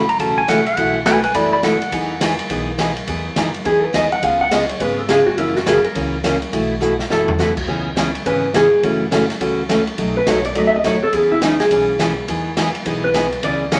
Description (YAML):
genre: country, western swing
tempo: 208 BPM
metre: 4/4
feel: swing 62% on 8ths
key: E major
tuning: A4 = 438 Hz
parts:
  - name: pedal steel guitar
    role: second line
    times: 0.0-2.2 s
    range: B4 to B5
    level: -20 LUFS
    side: equal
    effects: none
  - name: picked steel-string acoustic guitar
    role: accompaniment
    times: 0.0-13.8 s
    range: B2 to G#4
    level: -22 LUFS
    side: equal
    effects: none
  - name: upright bass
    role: bass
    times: 0.0-13.8 s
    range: E1 to F#2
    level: -34 LUFS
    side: equal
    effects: none
  - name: swinging big-band drum kit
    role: drums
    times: 0.1-13.8 s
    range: crash cymbal, hi-hat, kick drum, ride cymbal, snare drum, toms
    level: -26 LUFS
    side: equal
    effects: none
  - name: hollow-body jazz guitar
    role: second line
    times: 3.7-13.8 s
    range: D#4 to F#5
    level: -19 LUFS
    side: equal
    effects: none
room: wet studio reverb, RT60 0.8 s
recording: none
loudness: -18 LUFS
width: mono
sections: 0.0-3.1 A section; 3.1-13.8 A section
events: pedal steel guitar solo 0.0-3.1; hollow-body jazz guitar solo 3.1-13.8; drum fill 6.8-7.4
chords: 0.0 A6; 0.8 B7sus4; 1.9 Emaj7; 4.2 C#7; 5.4 F#7; 6.5 B7sus4; 7.7 C#m7; 8.8 F#m7; 10.0 B7; 11.1 E6; 12.3 Emaj7